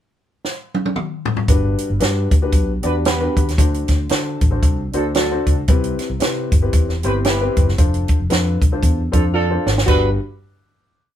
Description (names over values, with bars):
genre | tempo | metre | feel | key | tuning
uptempo 1960s-style soul | 114 BPM | 4/4 | swing 58% on 8ths | G major | A4 = 440 Hz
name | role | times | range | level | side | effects
compact cocktail drum kit | drums | 0.4-10.0 s | crash cymbal, hi-hat, kick drum, snare drum, toms | -17 LUFS | equal | none
warm upright piano | accompaniment | 1.5-10.2 s | G2 to D5 | -23 LUFS | left 3 dB | none
fingered electric bass | bass | 1.5-10.2 s | E1 to D3 | -21 LUFS | equal | tube saturation
dark horn section | second line | 2.8-10.1 s | G3 to B4 | -21 LUFS | right 2 dB | none
room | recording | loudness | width
light reverb | band playing live in one room | -15 LUFS | side -11 dB against mid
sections
0.0-1.5 pickup bar; 1.5-9.9 verse; 9.9-11.2 final chord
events
drum fill 0.4-1.5, 9.4-9.9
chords
0.0 N.C.; 1.5 Gmaj7; 3.6 D7; 5.7 Cmaj7; 7.8 F6; 9.9 Gmaj7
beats
0.44 0.96 | 1.49 2.01 2.54 3.06 | 3.59 4.11 4.64 5.16 | 5.69 6.21 6.74 7.26 | 7.79 8.31 8.83 9.36 | 9.88